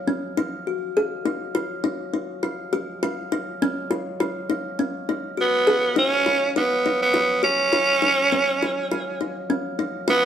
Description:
afrobeat; 102 BPM; 4/4; swing 53% on 16ths; A4 = 439 Hz
kalimba; arpeggios; 0.1-10.2 s; C#4 to G#4; -24 LUFS; left 2 dB
raspy tenor saxophone; melody; 5.4-10.3 s; B3 to C#4; -19 LUFS; right 2 dB
wet stone room reverb, RT60 1.4 s; band playing live in one room; -20 LUFS; side -9 dB against mid
0.0-10.1 A section
0.0 N.C.; 3.0 C#add9; 5.4 G#m7 (rootless); 7.7 C#add9
0.08 | 0.66 1.25 1.84 2.43 | 3.02 3.60 4.19 4.78 | 5.37 5.96 6.55 7.13 | 7.72 8.31 8.90 9.48 | 10.07

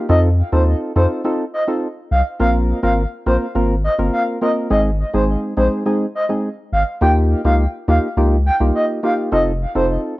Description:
dancehall; 104 BPM; 4/4; straight; Ab major; A4 = 439 Hz
percussive organ stab; accompaniment; 0.0-10.2 s; Ab3 to Bb4; -19 LUFS; equal; chorus, plate reverb
breathy flute-like synth lead; melody; 0.1-9.9 s; C5 to G5; -20 LUFS; equal; chorus, cassette tape, plate reverb, tape echo
round analog bass; bass; 0.1-10.0 s; F1 to F2; -17 LUFS; equal
light reverb; home recording on cassette, nothing above 7.5 kHz; -15 LUFS; side -18 dB against mid
0.0-10.2 A section
0.1 F7; 2.4 Bbsus2; 4.7 Ab; 7.0 Ebadd9; 9.3 F7
| 0.09 0.67 1.25 1.82 | 2.40 2.98 3.55 4.13 | 4.71 5.29 5.86 6.44 | 7.02 7.59 8.17 8.75 | 9.32 9.90

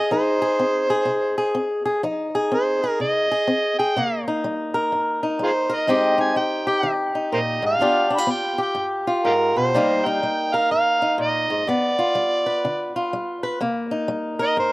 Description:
acoustic country blues, solo or duo; 124 BPM; 4/4; swing 63% on 8ths; C minor; A4 = 440 Hz
overdriven harmonica; melody; 0.0-14.7 s; F4 to B5; -21 LUFS; right 1 dB
fingerpicked swing-style acoustic guitar; accompaniment; 0.0-14.7 s; G2 to B4; -21 LUFS; left 1 dB; slapback echo
little or no reverb; recorded outdoors, with no room sound; -19 LUFS; side -20 dB against mid
0.0-13.6 A section; 13.6-14.7 B section
harmonica solo 13.6-14.7
0.0 Fm7; 4.0 Cm7; 5.9 Abmaj7; 7.8 G7; 9.7 Cm7; 11.7 G7; 13.6 Cm7
| 0.11 0.59 1.07 1.55 | 2.03 2.51 2.99 3.47 | 3.96 4.44 4.92 5.40 | 5.88 6.36 6.84 7.33 | 7.81 8.29 8.77 9.25 | 9.74 10.22 10.70 11.18 | 11.67 12.15 12.63 13.11 | 13.60 14.08 14.56

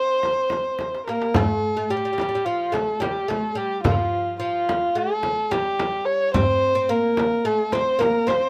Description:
Turkish makam ensemble; 216 BPM (eighths); 9/8; straight; C makam hicaz; A4 = 440 Hz
dark kamancheh; melody; 0.0-8.5 s; F4 to Db5; -24 LUFS; equal
oud; second line; 0.0-8.5 s; F3 to C4; -30 LUFS; equal
frame drum; percussion; 0.2-8.4 s; -29 LUFS; equal
darbuka; percussion; 0.3-8.4 s; -32 LUFS; equal
moderate small room ambience, RT60 0.5 s; -22 LUFS; mono
0.0-1.4 A section; 1.4-8.5 B section
drum fill 0.8-1.4
0.25 0.53 0.80 1.08 | 1.36 1.64 1.91 2.19 2.47 2.75 3.02 3.30 3.58 | 3.86 4.13 4.41 4.69 4.97 5.24 5.52 5.80 6.08 | 6.35 6.63 6.91 7.19 7.46 7.74 8.02 8.29

